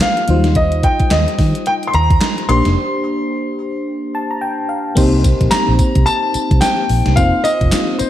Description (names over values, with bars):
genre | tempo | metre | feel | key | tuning
R&B, new jack swing | 109 BPM | 4/4 | swing 60% on 16ths | C dorian | A4 = 441 Hz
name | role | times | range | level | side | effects
dark baby grand piano | melody | 0.0-8.1 s | C5 to C6 | -18 LUFS | left 1 dB | none
FM electric piano | accompaniment | 0.0-8.1 s | F#3 to Bb5 | -19 LUFS | left 1 dB | chorus
gated 80s digital drum machine | drums | 0.0-8.1 s | crash cymbal, handclaps, hi-hat, kick drum, snare drum, tambourine | -17 LUFS | equal | gated reverb, gated reverb snare, overdrive
vintage muted fingered electric bass | bass | 0.3-8.0 s | F1 to Eb3 | -16 LUFS | equal | none
room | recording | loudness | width
light reverb, digital ambience | dark, warm production | -13 LUFS | side -12 dB against mid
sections
0.0-5.0 A section; 5.0-8.1 B section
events
break 2.8-5.0; FM electric piano fill 3.9-5.0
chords
0.3 Eb69; 2.5 Bb69; 5.0 Cm7; 7.2 F7sus4